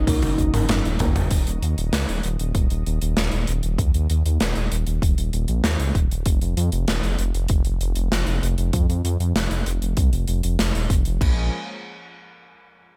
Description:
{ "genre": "synthwave", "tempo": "97 BPM", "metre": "4/4", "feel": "straight", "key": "unclear", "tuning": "A4 = 440 Hz", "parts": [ { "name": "soft octave-layered synth lead", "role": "melody", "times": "0.0-1.2 s", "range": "Eb4", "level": "-32 LUFS", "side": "equal", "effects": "chorus, tremolo, digital delay, shimmer reverb" }, { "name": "warm analog pad", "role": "sustained chords", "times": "0.0-1.3, 11.2-11.5 s", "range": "Eb3 to Ab4", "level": "-41 LUFS", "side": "equal", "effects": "chorus, tremolo, sidechain pumping, shimmer reverb" }, { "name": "mellow FM electric piano", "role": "stabs", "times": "0.0-1.1 s", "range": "Db4 to Eb5", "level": "-36 LUFS", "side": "equal", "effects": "none" }, { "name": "dark detuned saw bass", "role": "bass", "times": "0.0-11.5 s", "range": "Eb1 to F2", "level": "-24 LUFS", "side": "equal", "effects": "none" }, { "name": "soft round pluck", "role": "arpeggios", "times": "0.1-1.3 s", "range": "Bb3 to Bb4", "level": "-36 LUFS", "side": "equal", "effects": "none" }, { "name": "electronic kick drum", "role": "drums", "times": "0.1-11.3 s", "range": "none", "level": "-23 LUFS", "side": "equal", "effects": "none" }, { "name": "gated 80s drum kit", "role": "drums", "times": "0.1-11.3 s", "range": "crash cymbal, hi-hat, snare drum, toms", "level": "-28 LUFS", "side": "equal", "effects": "gated reverb" } ], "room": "small room ambience", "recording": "none", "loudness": "-22 LUFS", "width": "mono", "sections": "0.0-1.3 A section; 1.3-11.2 B section; 11.2-13.0 C section", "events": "drum fill 0.1-1.3", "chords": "0.0 Gb6; 1.3 Eb5; 6.3 F5; 11.2 Bbm7" }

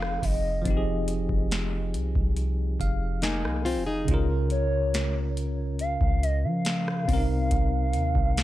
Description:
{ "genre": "contemporary R&B", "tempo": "70 BPM", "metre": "4/4", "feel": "straight", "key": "F minor", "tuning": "A4 = 440 Hz", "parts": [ { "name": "gliding portamento lead", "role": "melody", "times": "0.0-8.4 s", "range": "Db5 to F5", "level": "-31 LUFS", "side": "equal", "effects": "chorus, phaser, tape echo" }, { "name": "bell-like tine electric piano", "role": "accompaniment", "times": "0.0-8.4 s", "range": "C3 to Ab5", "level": "-31 LUFS", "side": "equal", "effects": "medium stereo tremolo" }, { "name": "soft 808-style bass", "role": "bass", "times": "0.0-8.4 s", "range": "F1 to F3", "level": "-27 LUFS", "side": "equal", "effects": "none" }, { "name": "booming analog drum machine", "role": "drums", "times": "0.0-8.4 s", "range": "hi-hat, kick drum, rim click, snare drum", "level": "-28 LUFS", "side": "equal", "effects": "none" }, { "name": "nylon-string guitar", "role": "arpeggios", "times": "3.2-4.3 s", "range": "Bb3 to Ab4", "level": "-30 LUFS", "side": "left 2 dB", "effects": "tape echo" } ], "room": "little or no reverb", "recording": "dry, gritty hardware recording", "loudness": "-24 LUFS", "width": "side -15 dB against mid", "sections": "0.0-8.4 A section", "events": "tine electric piano fill 2.4-4.1", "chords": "0.0 Fm7; 4.1 Db6; 7.1 Cm7" }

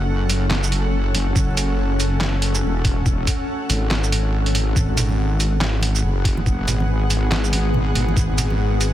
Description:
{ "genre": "deep dubstep", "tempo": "141 BPM", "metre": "4/4", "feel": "swing 59% on 16ths, half-time", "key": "G# phrygian", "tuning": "A4 = 441 Hz", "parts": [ { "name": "granular cloud pad", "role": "sustained chords", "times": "0.0-8.9 s", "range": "B3 to F#5", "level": "-26 LUFS", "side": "left 1 dB", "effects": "built-in reverb" }, { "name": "wobble bass", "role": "bass", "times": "0.0-8.9 s", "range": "E1 to G#1", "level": "-20 LUFS", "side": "equal", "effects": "chorus" }, { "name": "trip hop sampler-style drum kit", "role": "drums", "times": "0.3-8.9 s", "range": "handclaps, hi-hat, shaker, snare drum", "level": "-25 LUFS", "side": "right 2 dB", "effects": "small room ambience" }, { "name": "electronic kick drum", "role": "drums", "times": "1.4-8.3 s", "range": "none", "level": "-20 LUFS", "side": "equal", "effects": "small room ambience" }, { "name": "congas", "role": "percussion", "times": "5.0-8.6 s", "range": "none", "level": "-28 LUFS", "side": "right 2 dB", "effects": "none" } ], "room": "little or no reverb", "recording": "dense, heavily limited modern master", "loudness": "-17 LUFS", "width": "side -13 dB against mid", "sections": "0.0-8.9 A section", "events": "none", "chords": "0.0 F#m; 4.8 G#m7" }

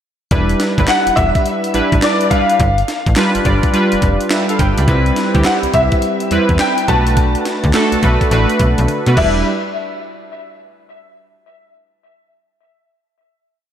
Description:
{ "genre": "R&B, new jack swing", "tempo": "105 BPM", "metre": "4/4", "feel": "swing 64% on 16ths", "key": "E minor", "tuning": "A4 = 439 Hz", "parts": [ { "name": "warm analog keys", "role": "accompaniment", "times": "0.3-9.5 s", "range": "G3 to B5", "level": "-16 LUFS", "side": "right 1 dB", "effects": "chorus" }, { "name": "slap-like FM bass", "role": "bass", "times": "0.3-9.4 s", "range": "E1 to B2", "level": "-16 LUFS", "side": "equal", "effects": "none" }, { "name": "breakbeat sampler-style drum kit", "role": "drums", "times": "0.3-9.3 s", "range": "crash cymbal, handclaps, hi-hat, kick drum, snare drum, toms", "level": "-18 LUFS", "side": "equal", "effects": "none" }, { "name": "warm concert grand piano", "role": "melody", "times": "0.9-9.4 s", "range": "D5 to A5", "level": "-18 LUFS", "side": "left 2 dB", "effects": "ensemble chorus, tape echo" } ], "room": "moderate plate reverb, RT60 2.7 s", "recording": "dreamy mix soaked in reverb", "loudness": "-12 LUFS", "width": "side -9 dB against mid", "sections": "0.3-9.5 verse; 9.5-11.7 final hit", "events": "drum fill 8.9-9.5", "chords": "0.3 Em7; 2.6 G7; 4.9 Cmaj7; 6.9 Bm7; 9.2 Em7; 9.5 N.C." }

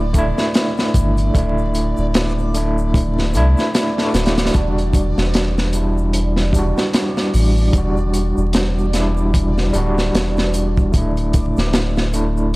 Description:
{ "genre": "trip hop", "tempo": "75 BPM", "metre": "4/4", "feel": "swing 58% on 16ths", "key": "unclear", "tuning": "A4 = 443 Hz", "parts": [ { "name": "overdriven tine electric piano", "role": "accompaniment", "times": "0.0-12.6 s", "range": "G3 to F#4", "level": "-20 LUFS", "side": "equal", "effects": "medium tremolo, tape echo" }, { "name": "soft dub sub bass", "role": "bass", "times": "0.0-12.6 s", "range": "D1 to C2", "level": "-18 LUFS", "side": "equal", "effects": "tube saturation" }, { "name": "backwards swelling texture", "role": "texture", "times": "0.0-12.6 s", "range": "D5", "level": "-31 LUFS", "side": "right 3 dB", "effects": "built-in reverb" }, { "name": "crunchy breakbeat drum kit", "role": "drums", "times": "0.1-12.4 s", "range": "hi-hat, kick drum, snare drum", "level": "-19 LUFS", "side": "equal", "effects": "none" }, { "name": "egg shaker", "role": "percussion", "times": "0.1-12.5 s", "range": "none", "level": "-40 LUFS", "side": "left 4 dB", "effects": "none" } ], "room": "studio reverb", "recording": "dark, warm production, vinyl crackle", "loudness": "-15 LUFS", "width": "side -21 dB against mid", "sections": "0.0-12.6 A section", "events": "none", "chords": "0.0 Dsus2" }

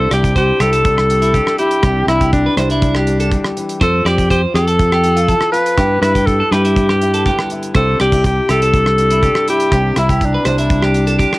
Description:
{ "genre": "highlife guitar band", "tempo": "122 BPM", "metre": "4/4", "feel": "straight", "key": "C major", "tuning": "A4 = 440 Hz", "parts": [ { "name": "clear alto saxophone", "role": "melody", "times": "0.0-11.4 s", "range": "D4 to B4", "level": "-16 LUFS", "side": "left 1 dB", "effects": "cassette tape" }, { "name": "fingerpicked steel-string acoustic guitar", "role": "accompaniment", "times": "0.0-11.4 s", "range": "G2 to G4", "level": "-23 LUFS", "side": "left 2 dB", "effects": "cassette tape" }, { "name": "clean electric guitar", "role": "arpeggios", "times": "0.0-11.4 s", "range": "E4 to D5", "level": "-20 LUFS", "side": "right 2 dB", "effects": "phaser, cassette tape, analog delay" }, { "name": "fingered electric bass", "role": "bass", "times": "0.0-11.2 s", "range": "C2 to G2", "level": "-16 LUFS", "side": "equal", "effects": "none" }, { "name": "damped 70s drum kit", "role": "drums", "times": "0.1-11.4 s", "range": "hi-hat, kick drum, rim click", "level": "-19 LUFS", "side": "equal", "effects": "cassette tape" } ], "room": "small room ambience", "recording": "home recording on cassette", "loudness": "-12 LUFS", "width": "side -20 dB against mid", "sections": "0.0-11.4 A section", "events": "none", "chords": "0.0 Cadd9; 3.8 F; 5.8 G6; 7.7 Cadd9" }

